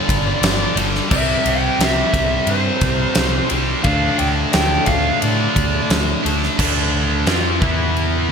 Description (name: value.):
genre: hard rock.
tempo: 88 BPM.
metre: 4/4.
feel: straight.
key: D dorian.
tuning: A4 = 437 Hz.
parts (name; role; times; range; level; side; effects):
dark smooth lead guitar; melody; 0.0-5.9 s; C5 to G5; -22 LUFS; equal; overdrive.
crunchy overdriven guitar; riff; 0.0-8.3 s; G2 to F4; -23 LUFS; equal; none.
heavy high-gain guitar; riff; 0.0-8.3 s; G2 to F4; -22 LUFS; equal; distortion.
overdriven picked electric bass; bass; 0.1-8.3 s; G1 to A2; -22 LUFS; equal; none.
huge arena drum kit; drums; 0.1-8.1 s; crash cymbal, kick drum, ride cymbal, snare drum; -20 LUFS; equal; gated reverb.
room: light reverb, small room ambience.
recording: bright 1980s-style digital production.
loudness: -15 LUFS.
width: side -6 dB against mid.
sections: 0.0-6.6 A section; 6.6-8.3 B section.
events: none.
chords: 0.0 G5; 1.1 C; 3.9 D5; 6.6 Dm; 7.6 E5.